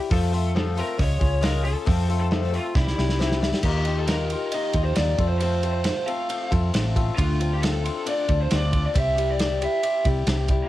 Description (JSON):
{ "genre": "folk rock and heartland rock", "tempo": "136 BPM", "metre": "4/4", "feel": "straight", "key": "F major", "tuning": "A4 = 440 Hz", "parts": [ { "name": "picked swing-style acoustic guitar", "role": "accompaniment", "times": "0.0-10.7 s", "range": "F2 to D5", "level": "-29 LUFS", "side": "left 7 dB", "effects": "cassette tape" }, { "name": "lead guitar through a small cranked amp", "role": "melody", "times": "0.1-10.7 s", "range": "Bb3 to F5", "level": "-28 LUFS", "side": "right 1 dB", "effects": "overdrive, cassette tape" }, { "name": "hollow-body short-scale fingered electric bass", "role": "bass", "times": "0.1-10.6 s", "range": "A1 to F2", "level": "-24 LUFS", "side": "right 1 dB", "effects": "none" }, { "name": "natural country drum kit", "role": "drums", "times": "0.1-10.6 s", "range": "crash cymbal, hi-hat, kick drum, ride cymbal, snare drum", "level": "-26 LUFS", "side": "equal", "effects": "cassette tape" } ], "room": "studio ambience", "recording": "home recording on cassette", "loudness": "-20 LUFS", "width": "side -14 dB against mid", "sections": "0.0-3.6 A section; 3.6-10.7 B section", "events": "drum fill 2.8-3.6", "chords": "0.1 F; 1.0 Db; 1.9 F; 2.8 Cadd9; 3.6 Ebadd9; 5.2 F; 7.2 Dm7; 8.9 Cadd9" }